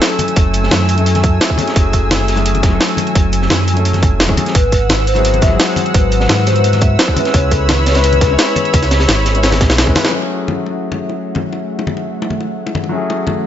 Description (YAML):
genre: liquid drum and bass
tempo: 172 BPM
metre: 4/4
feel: straight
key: F# minor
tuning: A4 = 436 Hz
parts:
  - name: dark baby grand piano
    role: accompaniment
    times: 0.0-13.5 s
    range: F#3 to C#5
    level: -20 LUFS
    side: left 3 dB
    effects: low-pass filter, digital delay
  - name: lush unison pad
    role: sustained chords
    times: 0.0-13.5 s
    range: A3 to E6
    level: -21 LUFS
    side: right 1 dB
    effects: chorus
  - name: crunchy breakbeat drum kit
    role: drums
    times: 0.0-10.1 s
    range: hi-hat, snare drum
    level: -22 LUFS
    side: equal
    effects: high-pass filter on hats, high-pass filter on snare, high-pass filter on room
  - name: jungle sampler-style drum kit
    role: drums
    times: 0.0-10.1 s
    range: hi-hat, shaker, snare drum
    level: -17 LUFS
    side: equal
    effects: overdrive, low-pass filter on hats, low-pass filter on snare, low-pass filter on perc
  - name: congas and bongos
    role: percussion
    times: 0.2-13.3 s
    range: none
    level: -23 LUFS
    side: left 4 dB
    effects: none
  - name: sub bass with octave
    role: bass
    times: 0.4-9.9 s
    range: E1 to G#2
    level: -15 LUFS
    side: right 1 dB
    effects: none
  - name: electronic kick drum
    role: drums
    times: 0.4-9.9 s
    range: none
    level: -14 LUFS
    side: right 1 dB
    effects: overdrive
  - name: hollow clarinet-like synth lead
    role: melody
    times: 4.6-9.1 s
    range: A4 to E5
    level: -18 LUFS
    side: left 2 dB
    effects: wide subtle chorus, digital delay
room: light reverb, small room ambience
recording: nothing above 7.8 kHz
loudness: -11 LUFS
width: side -10 dB against mid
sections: 0.0-10.1 A section; 10.1-13.5 B section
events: drum fill 9.4-10.1; band accent 10.0; filter sweep on grand piano 10.1-13.5; filter sweep on analog synth pad 10.1-13.5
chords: 0.0 F#m9; 4.6 G#7alt; 7.3 C#m7; 10.1 F#m9